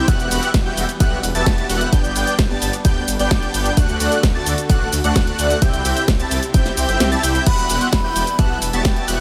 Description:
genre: EDM, festival progressive house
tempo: 130 BPM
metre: 4/4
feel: straight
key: E minor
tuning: A4 = 440 Hz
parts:
  - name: lush unison pad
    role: sustained chords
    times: 0.0-9.2 s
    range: C3 to F#5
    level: -31 LUFS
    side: equal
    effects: chorus, sidechain pumping
  - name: unison lead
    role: arpeggios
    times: 0.0-9.2 s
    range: F#6 to A6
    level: -28 LUFS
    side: equal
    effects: sidechain pumping, digital delay
  - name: supersaw chords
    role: riff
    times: 0.0-9.2 s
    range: A3 to A5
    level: -25 LUFS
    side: equal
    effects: ensemble chorus, sidechain pumping, digital delay
  - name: detuned saw bass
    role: bass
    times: 0.1-9.2 s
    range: E1 to D2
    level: -26 LUFS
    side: equal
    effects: chorus, sidechain pumping
  - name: electronic kick drum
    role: drums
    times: 0.1-8.9 s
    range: none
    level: -19 LUFS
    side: equal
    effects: none
  - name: house drum kit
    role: drums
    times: 0.1-9.2 s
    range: crash cymbal, hi-hat, ride cymbal, shaker, snare drum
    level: -26 LUFS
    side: equal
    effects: none
  - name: breathy jazz flute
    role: melody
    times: 7.5-9.2 s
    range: G5 to C6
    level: -26 LUFS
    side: equal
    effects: digital delay
room: little or no reverb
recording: none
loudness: -18 LUFS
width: mono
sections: 0.0-9.2 A section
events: kick drops out 7.0-7.5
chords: 0.1 Emadd9; 1.9 G; 3.8 D; 5.6 C; 7.5 Emadd9

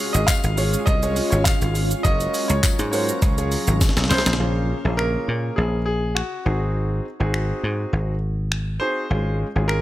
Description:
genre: dance-pop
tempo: 102 BPM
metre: 4/4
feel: straight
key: Db major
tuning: A4 = 440 Hz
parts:
  - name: bright concert grand piano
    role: melody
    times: 0.0-9.8 s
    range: Gb4 to F5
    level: -26 LUFS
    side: equal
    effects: digital delay
  - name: warm concert grand piano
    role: accompaniment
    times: 0.0-9.8 s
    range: Ab3 to Db5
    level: -28 LUFS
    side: equal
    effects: sidechain pumping
  - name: shimmering ambient pad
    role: sustained chords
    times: 0.0-4.4 s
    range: Db3 to Bb4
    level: -30 LUFS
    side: left 1 dB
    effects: chorus, built-in reverb, sidechain pumping
  - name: dry thumbed slap bass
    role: bass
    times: 0.1-9.8 s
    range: Gb1 to Bb2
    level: -22 LUFS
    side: equal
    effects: sidechain pumping
  - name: breakbeat sampler-style drum kit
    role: drums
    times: 0.1-9.8 s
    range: finger snaps, handclaps, hi-hat, kick drum, shaker, snare drum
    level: -22 LUFS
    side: equal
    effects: none
  - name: tambourine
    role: percussion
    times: 0.3-4.0 s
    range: none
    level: -31 LUFS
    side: left 9 dB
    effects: none
room: studio reverb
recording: none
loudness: -19 LUFS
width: side -15 dB against mid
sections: 0.0-4.4 A section; 4.4-9.8 B section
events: drum fill 3.8-4.4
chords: 0.0 Db/Ab; 2.0 Gbmaj7; 3.2 Dbmaj7; 4.4 Bbm7; 6.5 Ab7; 9.1 Db/Ab

